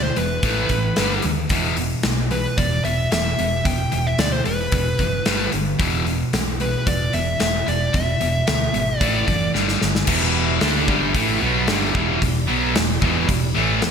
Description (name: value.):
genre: hard rock.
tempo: 112 BPM.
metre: 4/4.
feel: straight.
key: E minor.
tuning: A4 = 440 Hz.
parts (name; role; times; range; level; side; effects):
dark smooth lead guitar; melody; 0.0-9.5 s; B4 to G5; -24 LUFS; left 1 dB; overdrive.
high-gain distorted guitar; riff; 0.0-13.9 s; E2 to D4; -24 LUFS; left 8 dB; distortion.
overdriven semi-hollow guitar; riff; 0.0-13.9 s; E2 to D4; -25 LUFS; right 9 dB; none.
hollow-body short-scale fingered electric bass; bass; 0.0-13.9 s; E1 to D#2; -26 LUFS; equal; none.
big rock drum kit; drums; 0.2-13.9 s; crash cymbal, hi-hat, kick drum, snare drum; -23 LUFS; left 1 dB; gated reverb.
tonewheel organ; sustained chords; 10.1-13.9 s; G4 to B5; -32 LUFS; equal; slow rotary speaker, overdrive, chorus vibrato.
distorted electric guitar; riff; 10.1-13.9 s; E2 to D4; -24 LUFS; right 1 dB; distortion.
room: moderate lush hall reverb, RT60 1.6 s, small room ambience.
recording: bright 1980s-style digital production.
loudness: -18 LUFS.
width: side -7 dB against mid.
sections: 0.0-10.1 A section; 10.1-13.9 B section.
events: drum fill 9.5-10.1.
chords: 0.4 A5; 1.0 G5; 1.5 E5; 5.3 G5; 5.8 E5; 9.0 A5; 9.5 G5; 10.1 Em.